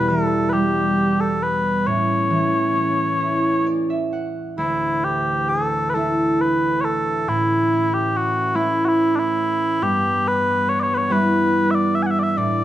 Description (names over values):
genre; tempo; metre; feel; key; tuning
celtic folk, Celtic slow air; 44-48 BPM (dotted quarters); 6/8; rubato; D major; A4 = 440 Hz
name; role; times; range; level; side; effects
mellow small bagpipes; melody; 0.0-12.6 s; D4 to G#5; -20 LUFS; left 1 dB; none
concert harp; accompaniment; 0.0-12.6 s; D2 to F#5; -21 LUFS; right 1 dB; none
mellow French horn section; sustained chords; 0.0-12.6 s; D2 to D4; -28 LUFS; left 2 dB; none
room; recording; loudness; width
moderate recital hall reverb, RT60 1.5 s; nothing above 10.6 kHz; -17 LUFS; side -12 dB against mid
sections
0.0-4.6 A section; 4.6-12.6 B section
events
harp fill 3.2-4.6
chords
0.0 Em; 1.9 A; 4.6 Dsus2; 7.3 A; 9.8 Em/G